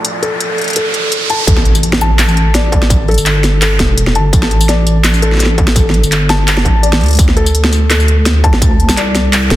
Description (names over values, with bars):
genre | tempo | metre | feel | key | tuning
half-time drum and bass | 168 BPM | 4/4 | swing 54% on 16ths, half-time | A minor | A4 = 440 Hz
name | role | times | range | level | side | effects
deep dark ambient pad | sustained chords | 0.0-1.4 s | A3 to D5 | -32 LUFS | left 1 dB | chorus, built-in reverb, sidechain pumping
felt-muted upright piano | arpeggios | 0.0-9.6 s | A4 to A5 | -18 LUFS | left 2 dB | digital delay
industrial drum kit | drums | 0.0-9.6 s | handclaps, hi-hat, snare drum, tambourine | -14 LUFS | equal | none
riser and impact | sound effects | 0.0-2.9 s | none | -18 LUFS | right 1 dB | none
deep soft wobble bass | bass | 1.5-9.6 s | D1 to D2 | -12 LUFS | equal | chorus, tube saturation
electronic kick drum | drums | 1.5-9.6 s | none | -12 LUFS | equal | distortion
room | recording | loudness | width
little or no reverb | dense, heavily limited modern master | -9 LUFS | side -14 dB against mid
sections
0.0-1.5 A section; 1.5-9.6 B section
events
riser 0.0-1.5; filter sweep on ambient pad 0.0-1.5; filter sweep on felt piano 0.0-1.5; drop 1.5-9.6; impact 1.5-2.9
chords
0.0 Dm; 1.5 A5; 7.2 D5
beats
| 0.05 0.40 0.76 1.12 | 1.48 1.83 2.19 2.55 | 2.90 3.26 3.62 3.98 | 4.33 4.69 5.05 5.40 | 5.76 6.12 6.47 6.83 | 7.19 7.55 7.90 8.26 | 8.62 8.97 9.33